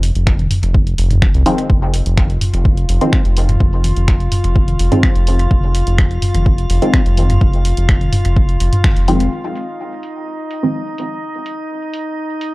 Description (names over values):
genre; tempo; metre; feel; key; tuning
dub techno; 126 BPM; 4/4; straight; F minor; A4 = 442 Hz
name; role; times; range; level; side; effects
round analog bass; bass; 0.0-9.3 s; F1 to C2; -15 LUFS; equal; tube saturation, sidechain pumping
punchy analog drum machine; drums; 0.0-12.5 s; finger snaps, hi-hat; -24 LUFS; equal; low-pass filter on hats, low-pass filter on snare, low-pass filter on room, dub echo
electronic kick drum; drums; 0.3-8.9 s; none; -15 LUFS; equal; overdrive
electronic toms; percussion; 0.4-8.9 s; none; -20 LUFS; equal; overdrive, sidechain pumping on toms
filtered dub chord stab; stabs; 1.5-10.8 s; Eb3 to C4; -19 LUFS; equal; chorus, phaser, sidechain pumping, dub echo
drifting glass-harmonics texture; texture; 2.3-12.5 s; Eb4 to F5; -25 LUFS; left 1 dB; chorus, built-in reverb, sidechain pumping
room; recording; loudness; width
digital ambience; dry, gritty hardware recording, transformer saturation, cassette tape; -12 LUFS; side -21 dB against mid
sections
0.0-9.3 A section; 9.3-12.5 B section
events
filter sweep on synth stab 0.0-9.3, 9.3-12.5; band accent 8.8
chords
0.0 Fm7